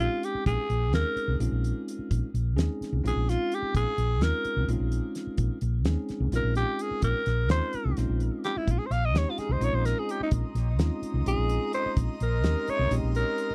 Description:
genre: electric jazz fusion.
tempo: 256 BPM (eighths).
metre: 7/8.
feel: straight.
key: Bb dorian.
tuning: A4 = 440 Hz.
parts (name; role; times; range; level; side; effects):
growling alto saxophone; melody; 0.0-13.5 s; Eb4 to F5; -33 LUFS; equal; tape echo.
bell-like tine electric piano; accompaniment; 0.0-13.5 s; Ab3 to Ab4; -36 LUFS; equal; none.
hollow-body short-scale fingered electric bass; bass; 0.0-13.5 s; Bb1 to Eb2; -29 LUFS; equal; none.
damped 70s drum kit; drums; 0.2-13.5 s; hi-hat, kick drum, snare drum; -32 LUFS; equal; none.
airy breathy pad; sustained chords; 8.7-13.5 s; Eb5 to Eb6; -44 LUFS; equal; chorus.
room: little or no reverb.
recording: dry, close 1970s-style studio recording.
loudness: -28 LUFS.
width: mono.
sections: 0.0-13.5 A section.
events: alto saxophone solo 0.0-13.5.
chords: 0.0 Bbm11.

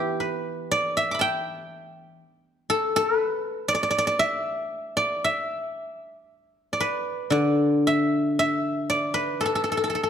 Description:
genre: chinese traditional, Chinese solo plucked strings.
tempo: 56-62 BPM.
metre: 2/4.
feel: rubato.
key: E yu mode.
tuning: A4 = 440 Hz.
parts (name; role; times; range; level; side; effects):
guzheng; solo; 0.0-10.1 s; D3 to D6; -22 LUFS; equal; none.
room: moderate recital hall reverb, RT60 1.7 s.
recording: dark, warm production.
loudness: -22 LUFS.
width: side -8 dB against mid.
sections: 0.0-7.3 A section; 7.3-10.1 B section.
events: none.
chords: none.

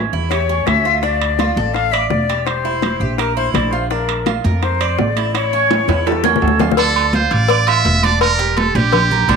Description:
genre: latin, Cuban son and guajira.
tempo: 167 BPM.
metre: 4/4.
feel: straight.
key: D minor.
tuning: A4 = 441 Hz.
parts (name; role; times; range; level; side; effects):
Cuban tres; arpeggios; 0.0-9.4 s; C#4 to D5; -21 LUFS; right 11 dB; none.
upright bass; bass; 0.0-9.4 s; E1 to F2; -20 LUFS; equal; none.
bongos and cowbell; percussion; 0.1-9.4 s; none; -22 LUFS; left 15 dB; none.
congas; percussion; 0.1-9.4 s; none; -23 LUFS; equal; none.
breathy bright jazz flute; second line; 0.3-6.8 s; A4 to F5; -20 LUFS; left 11 dB; none.
timbales and agogo bells; percussion; 0.3-9.4 s; none; -22 LUFS; right 14 dB; none.
trumpet with metal mute; melody; 6.8-9.4 s; G4 to E5; -16 LUFS; right 3 dB; none.
room: moderate spring reverb, RT60 1.9 s, small room ambience.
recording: 1960s-style stereo with parts hard left and right.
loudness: -13 LUFS.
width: side -5 dB against mid.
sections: 0.0-6.8 A section; 6.8-9.4 B section.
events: drum fill 5.7-6.8.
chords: 0.0 A7 (rootless); 1.0 D5; 2.5 Edim; 3.9 Bbadd9; 5.3 A; 6.8 Dm; 8.2 Em7b5.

